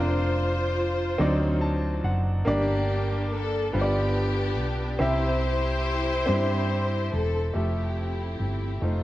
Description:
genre	slow gospel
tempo	47 BPM (dotted quarters)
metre	6/8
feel	straight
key	F major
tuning	A4 = 440 Hz
part	warm chamber string section	melody	0.0-9.0 s	A3 to C5	-29 LUFS	left 1 dB	slapback echo
part	clear baby grand piano	accompaniment	0.0-9.0 s	G2 to A5	-28 LUFS	equal	none
part	hollow-body short-scale fingered electric bass	bass	0.0-9.0 s	E1 to G2	-27 LUFS	equal	none
room	moderate concert hall reverb, RT60 2.3 s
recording	worn, warbling old tape, cassette tape, warbly pitch drift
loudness	-23 LUFS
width	side -15 dB against mid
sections	0.0-7.6 A section; 7.6-9.0 B section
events	grand piano fill 1.2-2.5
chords	0.0 Bb/F; 1.2 D7b9; 2.5 Gm; 3.7 G7; 5.0 C; 7.6 Fmaj9

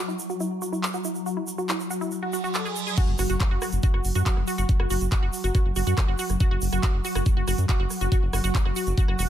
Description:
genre	psychedelic trance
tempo	140 BPM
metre	4/4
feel	straight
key	unclear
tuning	A4 = 440 Hz
part	swarming drone	sustained chords	0.0-9.3 s	F#3	-32 LUFS	left 1 dB	built-in reverb, sidechain pumping
part	wide unison pluck	riff	0.1-9.2 s	E4 to A4	-30 LUFS	right 2 dB	auto-pan, sidechain pumping, digital delay
part	egg shaker	percussion	0.1-9.3 s	none	-37 LUFS	right 4 dB	none
part	drum and bass drum kit	drums	0.8-9.3 s	crash cymbal, handclaps, hi-hat, rim click	-33 LUFS	equal	none
part	reverse cymbal and impact	sound effects	2.3-4.7 s	none	-35 LUFS	right 3 dB	none
part	electronic kick drum	drums	3.0-9.1 s	none	-22 LUFS	equal	none
part	round analog bass	bass	3.1-9.3 s	E1 to F#2	-25 LUFS	equal	none
room	digital ambience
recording	none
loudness	-22 LUFS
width	side -11 dB against mid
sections	0.0-3.0 A section; 3.0-9.3 B section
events	reverse cymbal 2.3-3.0; drop 3.0-9.3; impact 3.0-4.7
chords	0.0 F#7(no3); 3.0 N.C.

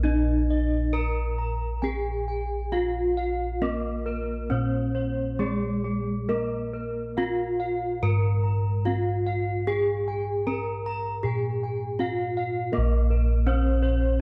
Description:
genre	Javanese gamelan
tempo	67-82 BPM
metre	4/4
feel	straight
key	Bb slendro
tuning	A4 = 441 Hz
part	gamelan-type bronze metallophone	melody	0.0-14.2 s	Ab3-45c to Bb4	-31 LUFS	equal	none
part	gamelan-type bronze metallophone	arpeggios	0.0-14.2 s	Ab4-45c to Bb5	-36 LUFS	equal	none
part	gamelan-type bossed gongs	bass	0.0-14.2 s	Bb1 to Bb4	-29 LUFS	equal	none
room	light reverb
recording	dark, warm production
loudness	-26 LUFS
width	mono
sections	0.0-12.7 A section; 12.7-14.2 B section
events	none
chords	none

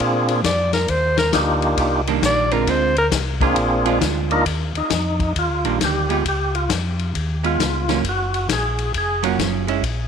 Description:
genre	soul jazz organ trio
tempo	134 BPM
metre	4/4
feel	swing 65% on 8ths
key	unclear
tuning	A4 = 440 Hz
part	percussive tonewheel organ	melody	0.0-9.4 s	Bb3 to Bb4	-22 LUFS	equal	slow rotary speaker, tape echo
part	mellow tonewheel organ	bass	0.0-10.1 s	F1 to Bb2	-23 LUFS	equal	chorus vibrato, slow rotary speaker
part	vintage drum kit	drums	0.0-10.0 s	hi-hat, kick drum, ride cymbal, snare drum	-24 LUFS	left 6 dB	none
part	breathy alto saxophone	melody	0.5-3.1 s	Bb4 to D5	-20 LUFS	equal	none
part	archtop guitar, miked and amplified	accompaniment	2.1-9.8 s	D3 to F4	-23 LUFS	right 14 dB	none
room	light reverb, studio reverb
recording	1960s-style stereo with parts hard left and right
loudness	-17 LUFS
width	side -7 dB against mid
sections	0.0-4.5 A section; 4.5-10.1 A section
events	alto saxophone solo 0.0-4.5; tonewheel organ solo 4.5-10.1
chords	0.0 Bb7; 0.9 Ebmaj7; 2.7 Dm7b5; 3.6 Bb7; 4.5 Ebmaj7; 6.3 Db7; 8.0 Gbmaj7

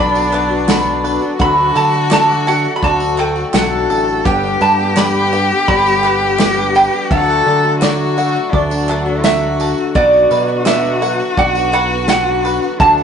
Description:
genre	indie folk with a building arrangement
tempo	84 BPM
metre	4/4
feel	straight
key	unclear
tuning	A4 = 440 Hz
part	lap resonator guitar	melody	0.0-13.0 s	D5 to B5	-15 LUFS	right 2 dB	none
part	warm cello	second line	0.0-13.0 s	D4 to A4	-18 LUFS	left 3 dB	none
part	picked twelve-string acoustic guitar	accompaniment	0.0-13.0 s	G2 to G4	-22 LUFS	left 5 dB	none
part	hand-pumped harmonium	sustained chords	0.0-13.0 s	D3 to A4	-26 LUFS	right 1 dB	none
part	bluegrass banjo	arpeggios	0.0-13.0 s	F#4 to A5	-23 LUFS	right 1 dB	none
part	picked electric bass	bass	0.0-13.0 s	G1 to D3	-21 LUFS	equal	none
part	tambourine	percussion	0.2-13.0 s	none	-35 LUFS	right 5 dB	none
part	group handclap	percussion	0.3-12.3 s	none	-28 LUFS	right 3 dB	none
part	unplugged drum kit	drums	0.7-13.0 s	kick drum, snare drum	-17 LUFS	equal	none
room	moderate studio reverb, RT60 0.5 s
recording	rough rehearsal-room recording, warm saturation, nothing above 10.5 kHz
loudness	-12 LUFS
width	side -7 dB against mid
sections	0.0-13.0 A section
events	none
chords	0.0 Bm; 1.4 D; 4.3 G; 7.1 D; 10.0 Bm

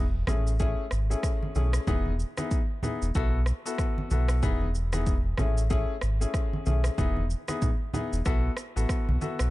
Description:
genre	afrobeats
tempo	94 BPM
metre	4/4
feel	swing 58% on 16ths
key	E major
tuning	A4 = 439 Hz
part	clear concert grand piano	accompaniment	0.0-9.5 s	A3 to A4	-32 LUFS	left 4 dB	none
part	sub bass with octave	bass	0.0-9.5 s	E1 to B1	-26 LUFS	equal	none
part	afro-pop drum kit	drums	0.3-9.5 s	kick drum, rim click, shaker	-30 LUFS	equal	vintage 12-bit sampler grit
part	congas	percussion	0.3-9.4 s	none	-35 LUFS	right 2 dB	none
room	little or no reverb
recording	dark, warm production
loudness	-25 LUFS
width	side -18 dB against mid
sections	0.0-9.5 A section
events	none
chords	0.3 Amaj7; 1.9 Emaj7; 3.2 B7sus4; 4.4 Emaj7; 5.4 Amaj7; 7.0 Emaj7; 8.3 B7sus4

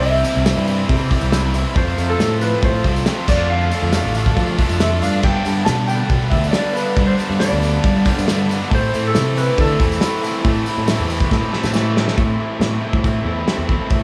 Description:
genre	classic rock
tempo	138 BPM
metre	4/4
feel	straight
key	A minor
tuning	A4 = 439 Hz
part	clean lap steel guitar	melody	0.0-11.7 s	A4 to A5	-25 LUFS	equal	none
part	overdriven electric guitar	riff	0.0-14.0 s	G2 to F4	-26 LUFS	equal	none
part	tight distorted guitar	riff	0.0-12.2 s	F2 to D4	-29 LUFS	equal	distortion
part	picked electric bass	bass	0.0-14.0 s	A1 to G3	-22 LUFS	equal	none
part	cloth-damped thuddy drum kit	drums	0.0-14.0 s	crash cymbal, hi-hat, kick drum, snare drum	-23 LUFS	equal	none
part	tambourine	percussion	0.2-11.9 s	none	-39 LUFS	equal	none
room	light reverb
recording	studio reverb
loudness	-18 LUFS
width	mono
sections	0.0-12.2 A section; 12.2-14.0 B section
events	drum fill 11.3-12.2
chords	0.0 C; 1.8 F; 3.3 Dm; 5.2 G; 8.7 Am

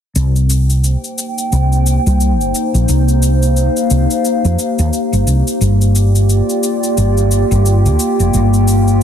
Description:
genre	organic downtempo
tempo	88 BPM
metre	4/4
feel	swing 59% on 16ths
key	C minor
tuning	A4 = 440 Hz
part	warbly tape-like pad	sustained chords	0.9-9.0 s	Bb3 to G5	-16 LUFS	left 1 dB	chorus, built-in reverb
part	woody fretless electric bass	bass	0.2-9.0 s	F1 to F2	-12 LUFS	equal	ensemble chorus
part	cabasa	drums	0.2-9.0 s	none	-24 LUFS	left 3 dB	none
room	light reverb, digital ambience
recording	dense, heavily limited modern master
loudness	-11 LUFS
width	side -9 dB against mid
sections	0.2-9.0 A section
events	none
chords	0.2 Cm7; 5.6 Gm7

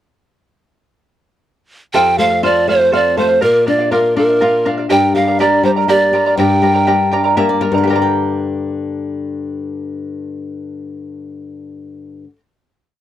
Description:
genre	andean folk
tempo	81 BPM (dotted quarters)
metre	6/8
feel	straight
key	G minor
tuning	A4 = 440 Hz
part	breathy mellow polished pan flute	melody	1.9-7.3 s	Bb4 to G5	-13 LUFS	right 2 dB	none
part	charango	accompaniment	1.9-12.4 s	G4 to Bb5	-17 LUFS	right 2 dB	none
part	flamenco guitar	accompaniment	1.9-12.4 s	F2 to G5	-18 LUFS	left 4 dB	none
room	little or no reverb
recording	dry, close 1970s-style studio recording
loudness	-12 LUFS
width	side -12 dB against mid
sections	1.9-7.9 A section; 7.9-10.9 final chord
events	nylon-string guitar fill 7.1-7.9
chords	1.9 F; 3.4 Bb; 4.9 Gm

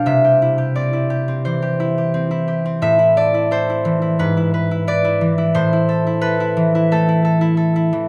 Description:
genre	classical, solo harp piece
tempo	88 BPM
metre	4/4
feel	rubato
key	unclear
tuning	A4 = 440 Hz
part	concert harp	solo	0.0-8.1 s	G#2 to G5	-17 LUFS	equal	none
room	light reverb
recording	none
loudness	-17 LUFS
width	mono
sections	0.0-8.1 A section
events	none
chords	0.1 C; 2.8 Am; 4.2 E/G#; 5.5 Am

